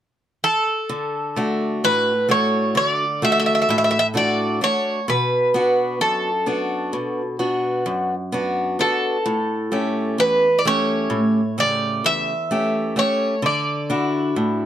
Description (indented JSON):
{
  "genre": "greek folk",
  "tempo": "129 BPM (eighths)",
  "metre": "9/8",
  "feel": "straight",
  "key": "D major",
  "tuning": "A4 = 440 Hz",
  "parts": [
    { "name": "Greek bouzouki", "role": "melody", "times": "0.4-14.7 s", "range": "A4 to E5", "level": "-20 LUFS", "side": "right 1 dB", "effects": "none" },
    { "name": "picked steel-string acoustic guitar", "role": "accompaniment", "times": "0.9-14.7 s", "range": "E2 to G4", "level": "-22 LUFS", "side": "equal", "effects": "none" }
  ],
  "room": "light reverb",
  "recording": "close, detailed microphones",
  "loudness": "-18 LUFS",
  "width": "side -10 dB against mid",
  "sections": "0.9-14.7 A section",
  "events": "none",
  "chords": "0.0 N.C.; 0.9 D; 5.1 Bm; 9.3 A7; 13.4 Dadd9"
}